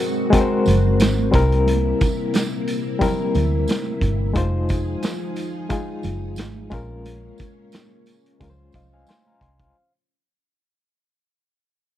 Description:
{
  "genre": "lush 1970s-style soul",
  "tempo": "89 BPM",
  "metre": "4/4",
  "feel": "swing 54% on 16ths",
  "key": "Db major",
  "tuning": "A4 = 440 Hz",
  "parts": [
    { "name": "overdriven reed electric piano", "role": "accompaniment", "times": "0.0-9.9 s", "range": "G3 to C6", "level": "-23 LUFS", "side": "left 3 dB", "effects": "tremolo" },
    { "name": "string machine, full ensemble", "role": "sustained chords", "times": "0.0-9.7 s", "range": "C3 to C5", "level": "-29 LUFS", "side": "right 1 dB", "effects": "ensemble chorus" },
    { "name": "vintage drum kit", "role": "drums", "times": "0.3-9.7 s", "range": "hi-hat, kick drum, snare drum", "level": "-22 LUFS", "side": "right 1 dB", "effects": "none" },
    { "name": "tambourine", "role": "percussion", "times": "0.3-9.2 s", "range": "none", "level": "-41 LUFS", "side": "right 8 dB", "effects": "none" },
    { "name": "vintage muted fingered electric bass", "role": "bass", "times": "0.7-9.7 s", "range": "F1 to D2", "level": "-21 LUFS", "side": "equal", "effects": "none" },
    { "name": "congas", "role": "percussion", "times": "0.7-9.4 s", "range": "none", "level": "-30 LUFS", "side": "right 8 dB", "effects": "none" }
  ],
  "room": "little or no reverb",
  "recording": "dry, close 1970s-style studio recording",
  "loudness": "-18 LUFS",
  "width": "side -12 dB against mid",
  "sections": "0.0-9.7 A section",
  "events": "fade-out 0.0-9.7; reed electric piano fill 8.4-9.7",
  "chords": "0.0 Ab9; 1.3 C7; 4.4 Fm7; 6.7 Bbm7; 8.4 Dbmaj7"
}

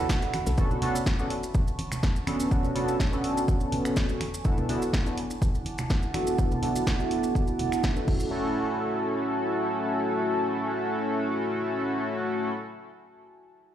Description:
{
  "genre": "deep house",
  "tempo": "124 BPM",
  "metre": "4/4",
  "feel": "swing 53% on 16ths",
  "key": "F# minor",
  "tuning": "A4 = 438 Hz",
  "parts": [
    { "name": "deep dark ambient pad", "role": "sustained chords", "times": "0.0-12.5 s", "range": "E4 to D6", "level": "-34 LUFS", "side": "right 3 dB", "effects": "chorus, built-in reverb, sidechain pumping" },
    { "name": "warbly dusty pluck", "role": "arpeggios", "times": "0.0-0.5 s", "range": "F#4 to A4", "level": "-39 LUFS", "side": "left 1 dB", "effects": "chorus, phaser, sidechain pumping, ping-pong delay" },
    { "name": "chorused polysynth", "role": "stabs", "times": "0.0-12.5 s", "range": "A3 to A4", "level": "-28 LUFS", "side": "equal", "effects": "sidechain pumping, ping-pong delay" },
    { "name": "electronic kick drum", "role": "drums", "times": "0.1-8.2 s", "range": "none", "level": "-27 LUFS", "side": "equal", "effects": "none" },
    { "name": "punchy analog drum machine", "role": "drums", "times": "0.1-8.2 s", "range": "crash cymbal, finger snaps, hi-hat, snare drum", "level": "-34 LUFS", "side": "equal", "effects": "none" },
    { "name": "vintage drum kit", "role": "drums", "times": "0.1-0.6 s", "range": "hi-hat, snare drum", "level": "-45 LUFS", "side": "right 1 dB", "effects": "none" },
    { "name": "congas", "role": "percussion", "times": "0.1-8.2 s", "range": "none", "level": "-34 LUFS", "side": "right 1 dB", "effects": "none" },
    { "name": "maracas", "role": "percussion", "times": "0.1-8.3 s", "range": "none", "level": "-42 LUFS", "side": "right 2 dB", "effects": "none" },
    { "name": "woody FM bass", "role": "bass", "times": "0.5 s", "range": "B1", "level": "-27 LUFS", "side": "equal", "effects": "sidechain pumping" }
  ],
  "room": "light reverb",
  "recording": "played on a big sound system in a bare room, large studio reverb",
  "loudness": "-25 LUFS",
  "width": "side -10 dB against mid",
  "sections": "0.0-8.3 A section; 8.3-12.2 B section",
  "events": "filter sweep on analog polysynth 0.0-8.3",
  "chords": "0.3 Bm9; 4.2 E9sus4; 8.1 F#m7"
}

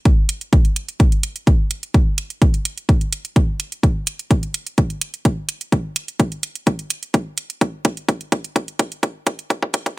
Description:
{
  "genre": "techno",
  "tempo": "127 BPM",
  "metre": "4/4",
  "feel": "straight",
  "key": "none",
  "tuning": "none",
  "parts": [
    { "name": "electronic hi-hat", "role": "drums", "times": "0.1-10.0 s", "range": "none", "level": "-24 LUFS", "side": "right 4 dB", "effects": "high-pass filter on hats" },
    { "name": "electronic kick drum", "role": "drums", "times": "0.1-10.0 s", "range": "none", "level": "-15 LUFS", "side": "equal", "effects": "none" }
  ],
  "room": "digital ambience",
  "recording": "high-pass filter",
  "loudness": "-17 LUFS",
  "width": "side -20 dB against mid",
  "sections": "0.0-10.0 A section",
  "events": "build-up 0.0-10.0; filter sweep 0.0-10.0; drum fill 3.8-10.0",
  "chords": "none"
}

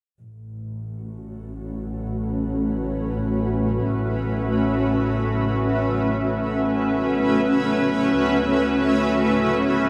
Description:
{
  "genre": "ambient",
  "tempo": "free time",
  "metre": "none",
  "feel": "none",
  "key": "A major",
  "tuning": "A4 = 436 Hz",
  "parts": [
    { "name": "granular cloud pad", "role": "sustained chords", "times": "1.5-9.9 s", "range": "A3 to E5", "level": "-23 LUFS", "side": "equal", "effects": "built-in reverb, shimmer reverb" },
    { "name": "warm symphonic double bass section", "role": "bass", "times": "0.2-9.9 s", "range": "A1 to D2", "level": "-30 LUFS", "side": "equal", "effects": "none" }
  ],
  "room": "wet cathedral reverb, RT60 5.9 s",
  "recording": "none",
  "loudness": "-22 LUFS",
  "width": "mono",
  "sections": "0.2-9.9 A section",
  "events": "fade-out on double bass section 0.2-9.9",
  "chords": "0.2 A; 8.2 Dmaj7"
}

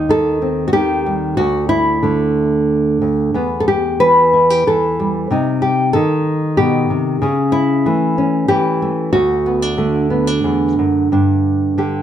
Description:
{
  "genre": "folk, solo fingerstyle acoustic guitar",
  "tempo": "93 BPM",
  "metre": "3/4",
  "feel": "rubato",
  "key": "unclear",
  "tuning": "A4 = 439 Hz",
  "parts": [
    { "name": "nylon-string guitar", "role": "solo", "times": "0.0-12.0 s", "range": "D2 to B4", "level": "-13 LUFS", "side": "equal", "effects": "none" }
  ],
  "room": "moderate large studio reverb, RT60 1.1 s",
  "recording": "none",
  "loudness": "-13 LUFS",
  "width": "side -10 dB against mid",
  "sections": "0.0-11.1 A section",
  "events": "none",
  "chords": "0.0 Cm/Eb; 1.4 D5; 3.3 Em; 5.3 Cm; 7.2 A/C#; 9.1 D; 11.1 G5"
}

